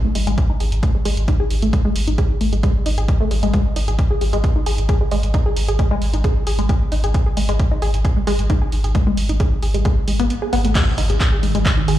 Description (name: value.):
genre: driving peak-time techno.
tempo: 133 BPM.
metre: 4/4.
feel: straight.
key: unclear.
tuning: A4 = 439 Hz.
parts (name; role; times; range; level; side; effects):
tight sequenced synth; riff; 0.0-11.9 s; G#3 to G#4; -23 LUFS; left 1 dB; chorus, phaser, tube saturation, sidechain pumping, tape echo.
saturated sub bass; bass; 0.2-12.0 s; G#1; -20 LUFS; equal; tube saturation, sidechain pumping, low-pass filter.
punchy analog drum machine; drums; 0.2-12.0 s; crash cymbal, handclaps, hi-hat; -28 LUFS; right 1 dB; sidechain pumping on hats, sidechain pumping on cymbals.
electronic kick drum; drums; 0.4-11.8 s; none; -17 LUFS; equal; none.
deep dark ambient pad; drone; 11.3-12.0 s; G#2 to D#3; -24 LUFS; right 4 dB; chorus, built-in reverb, sidechain pumping.
impact; sound effects; 10.8-12.0 s; none; -24 LUFS; equal; none.
room: light reverb.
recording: played on a big sound system in a bare room, large studio reverb.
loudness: -16 LUFS.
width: side -13 dB against mid.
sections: 0.0-10.8 A section; 10.8-12.0 B section.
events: kick drops out 10.3-10.8; drop 10.8-12.0; impact 10.8-12.0.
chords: 0.0 N.C.; 10.8 G#5.